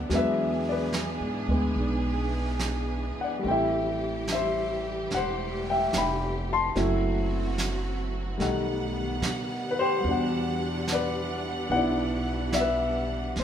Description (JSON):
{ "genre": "jazz", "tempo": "72 BPM", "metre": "4/4", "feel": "swing 67% on 8ths", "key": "E minor", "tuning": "A4 = 439 Hz", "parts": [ { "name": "warm concert grand piano", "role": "accompaniment", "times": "0.0-13.4 s", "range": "B2 to C6", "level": "-27 LUFS", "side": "left 2 dB", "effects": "none" }, { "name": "rich symphonic string section", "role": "sustained chords", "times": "0.0-13.4 s", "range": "B2 to F#5", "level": "-33 LUFS", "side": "right 2 dB", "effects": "none" }, { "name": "upright bass", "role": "bass", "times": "0.0-13.4 s", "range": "E1 to B2", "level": "-32 LUFS", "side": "right 1 dB", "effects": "none" }, { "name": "vintage brush drum kit", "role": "drums", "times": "0.1-13.4 s", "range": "brushed snare drum, hi-hat, snare drum", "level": "-35 LUFS", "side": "right 3 dB", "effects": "none" } ], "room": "wet large studio reverb, RT60 1.1 s", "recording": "band playing live in one room", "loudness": "-25 LUFS", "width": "side -9 dB against mid", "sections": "0.0-13.4 A section", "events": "none", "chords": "0.1 E7; 3.4 Am7; 6.7 F#m7b5; 8.4 B7b13; 10.0 Em9" }